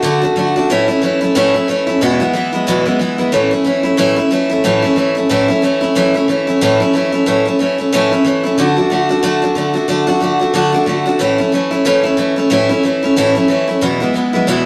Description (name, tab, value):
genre	rock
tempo	183 BPM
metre	4/4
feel	swing 58% on 8ths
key	A major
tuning	A4 = 439 Hz
part	picked steel-string acoustic guitar	solo	0.0-14.7 s	E2 to F#4	-14 LUFS	equal	none
room	wet studio reverb, RT60 0.6 s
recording	rough rehearsal-room recording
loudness	-14 LUFS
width	mono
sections	0.0-3.3 A section; 3.3-14.7 A section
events	none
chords	0.0 D; 0.7 A; 2.0 E; 3.3 A; 8.6 D; 11.2 A; 13.8 E